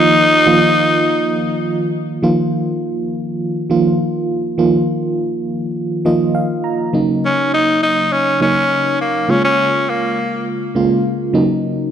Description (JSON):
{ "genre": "pop", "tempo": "102 BPM", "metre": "4/4", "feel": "straight", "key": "unclear", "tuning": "A4 = 440 Hz", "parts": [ { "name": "raspy tenor saxophone", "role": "melody", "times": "0.0-1.9, 7.3-10.5 s", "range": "Bb3 to Eb4", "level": "-14 LUFS", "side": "left 1 dB", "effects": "ping-pong delay" }, { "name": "FM electric piano with tremolo", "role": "accompaniment", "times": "0.0-11.9 s", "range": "Db3 to Bb5", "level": "-16 LUFS", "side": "right 1 dB", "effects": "none" } ], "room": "moderate concert hall reverb, RT60 1.9 s, studio ambience", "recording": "none", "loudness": "-14 LUFS", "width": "side -9 dB against mid", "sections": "0.0-2.2 A section; 2.2-6.9 B section; 6.9-11.9 C section", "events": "FM electric piano fill 5.8-6.9", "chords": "0.0 Bbsus4; 6.9 Ebm7; 9.3 Bbm7; 11.3 Ebm7" }